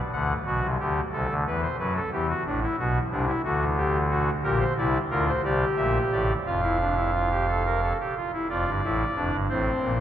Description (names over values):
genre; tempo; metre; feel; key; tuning
classical, baroque-style 3-part fugue for pipe organ; 60 BPM (dotted quarters); 6/8; straight; F major from 4.4 s; A4 = 437 Hz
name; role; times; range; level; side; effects
pipe organ, soft reed; solo; 0.1-10.0 s; F1 to F#5; -23 LUFS; equal; none
room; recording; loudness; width
wet cathedral reverb, RT60 7.4 s; in a vast, echoing space; -23 LUFS; side -10 dB against mid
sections
0.5-8.5 A section; 8.5-10.0 B section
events
none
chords
0.5 Bm; 1.5 Em; 2.5 Am; 3.4 D; 4.4 Gm/Bb; 5.4 C7; 6.5 F; 9.5 F/A (rootless)